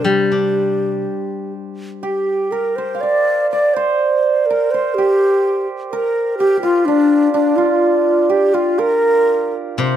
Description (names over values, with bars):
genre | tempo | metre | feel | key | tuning
chinese traditional, Chinese chamber ensemble | 62 BPM | 2/4 | rubato | G yu mode | A4 = 440 Hz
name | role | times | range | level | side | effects
mellow hollow xiao | melody | 0.0-10.0 s | D4 to D5 | -16 LUFS | left 1 dB | none
hammered dulcimer | second line | 0.0-10.0 s | D4 to F5 | -19 LUFS | right 6 dB | none
steel-string zither | accompaniment | 0.0-3.0, 9.8-10.0 s | C3 to D4 | -22 LUFS | left 7 dB | none
room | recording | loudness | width
little or no reverb | close, detailed microphones | -14 LUFS | side -10 dB against mid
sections
0.0-2.0 A section; 2.0-10.0 B section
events
none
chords
none